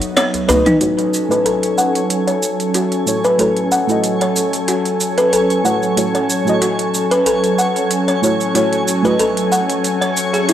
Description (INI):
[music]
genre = organic downtempo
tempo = 93 BPM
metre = 4/4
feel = swing 54% on 16ths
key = F# dorian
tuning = A4 = 440 Hz
[part]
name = deep mellow chord stab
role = accompaniment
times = 0.0-10.5 s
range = A3 to F#5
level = -21 LUFS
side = right 2 dB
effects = chorus, analog delay
[part]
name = airy breathy pad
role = sustained chords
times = 0.0-10.5 s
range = F#3 to G#5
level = -19 LUFS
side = equal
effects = chorus
[part]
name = organic electronic drum kit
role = drums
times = 0.0-10.5 s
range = cabasa, hi-hat, snare drum, toms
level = -21 LUFS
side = right 2 dB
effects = small room ambience
[part]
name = buzzing kalimba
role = arpeggios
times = 0.2-10.5 s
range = D#4 to F#5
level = -17 LUFS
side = left 1 dB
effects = low-pass filter, analog delay
[part]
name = djembe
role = percussion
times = 0.3-0.8 s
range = none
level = -23 LUFS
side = equal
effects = none
[part]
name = twinkling granular texture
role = texture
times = 1.1-10.5 s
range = C#4 to C#5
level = -26 LUFS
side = equal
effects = built-in reverb
[sound]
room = light reverb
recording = dry, gritty hardware recording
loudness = -14 LUFS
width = side -10 dB against mid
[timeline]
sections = 0.8-10.5 A section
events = drum fill 0.5-0.8; filter sweep on kalimba 0.8-10.5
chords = 0.0 B; 0.8 F#m7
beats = 0.17 | 0.81 1.46 2.10 2.75 | 3.39 4.04 4.68 5.33 | 5.97 6.62 7.26 7.91 | 8.55 9.20 9.84 10.49